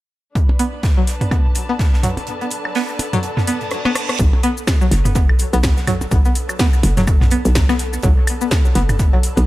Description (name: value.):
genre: minimal techno.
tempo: 125 BPM.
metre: 4/4.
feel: swing 58% on 16ths.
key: B minor.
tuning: A4 = 439 Hz.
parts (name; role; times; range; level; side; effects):
electronic kick drum; drums; 0.4-9.1 s; none; -16 LUFS; equal; none.
gated 80s drum kit; drums; 0.4-9.4 s; hi-hat, snare drum; -33 LUFS; right 2 dB; high-pass filter on hats, high-pass filter on snare, high-pass filter on room, tape echo.
dark studio string section; texture; 0.4-9.5 s; D4 to A5; -31 LUFS; left 1 dB; sidechain pumping.
swarming drone; texture; 1.6-9.5 s; A4; -33 LUFS; left 1 dB; built-in reverb, sidechain pumping.
electronic percussion blips, toms and claves; percussion; 0.5-9.5 s; none; -23 LUFS; right 1 dB; tape echo.
string-like resonator pluck; riff; 0.6-9.2 s; F#3 to B3; -22 LUFS; equal; chorus, phaser, sidechain pumping, dub echo.
techno drum kit; drums; 0.6-9.5 s; hi-hat, rim click, shaker, snare drum; -24 LUFS; equal; none.
reverse cymbal; sound effects; 3.6-4.2 s; none; -28 LUFS; right 6 dB; none.
hollow knocking FM bass; bass; 4.2-9.5 s; F#1 to B1; -18 LUFS; equal; sidechain pumping.
room: little or no reverb.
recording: echo-heavy mix.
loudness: -14 LUFS.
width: side -17 dB against mid.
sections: 0.4-4.2 A section; 4.2-9.5 B section.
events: filter sweep on synth pluck 0.4-4.2, 4.2-9.5; break 2.3-4.2; reverse cymbal 3.6-4.2; drum fill 3.7-4.2.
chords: 0.4 Bm7.